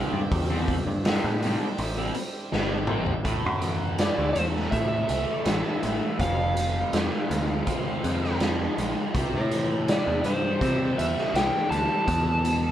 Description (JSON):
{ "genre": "psychedelic rock", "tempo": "82 BPM", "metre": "4/4", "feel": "straight", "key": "A minor", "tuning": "A4 = 440 Hz", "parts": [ { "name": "bright tonewheel organ", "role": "sustained chords", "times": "0.0-12.7 s", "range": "G3 to A4", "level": "-39 LUFS", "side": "right 4 dB", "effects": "slow rotary speaker, overdrive" }, { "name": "fuzz guitar", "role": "riff", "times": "0.0-12.7 s", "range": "E2 to C4", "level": "-30 LUFS", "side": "equal", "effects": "distortion, phaser" }, { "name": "picked electric bass", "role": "bass", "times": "0.1-12.7 s", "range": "F1 to C3", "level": "-28 LUFS", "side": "equal", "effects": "none" }, { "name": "raw garage drum kit", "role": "drums", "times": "0.3-12.6 s", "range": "hi-hat, kick drum, snare drum, toms", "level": "-28 LUFS", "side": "equal", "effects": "none" }, { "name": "overdriven slide guitar", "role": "melody", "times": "4.0-12.7 s", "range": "C5 to A5", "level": "-28 LUFS", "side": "right 1 dB", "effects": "none" } ], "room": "light reverb", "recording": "band playing live in one room", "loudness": "-23 LUFS", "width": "side -11 dB against mid", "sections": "0.0-3.2 A section; 3.2-12.7 B section", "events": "drum fill 2.5-3.2", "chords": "0.0 Cadd9; 3.2 Am; 6.2 Fmadd9; 9.1 C; 12.1 Esus4" }